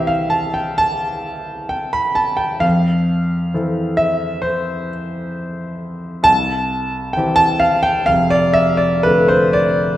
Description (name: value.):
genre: classical, romantic nocturne for solo piano.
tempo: 57-68 BPM.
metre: 4/4.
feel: rubato.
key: C major.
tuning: A4 = 435 Hz.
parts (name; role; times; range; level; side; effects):
clear grand piano; solo; 0.0-10.0 s; F1 to B5; -15 LUFS; equal; none.
room: wet recital hall reverb, RT60 1.6 s.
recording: none.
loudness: -14 LUFS.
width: side -13 dB against mid.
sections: 0.0-10.0 A section.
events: none.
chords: 0.0 C; 2.6 Fmaj7; 6.3 C; 8.1 Dm/F.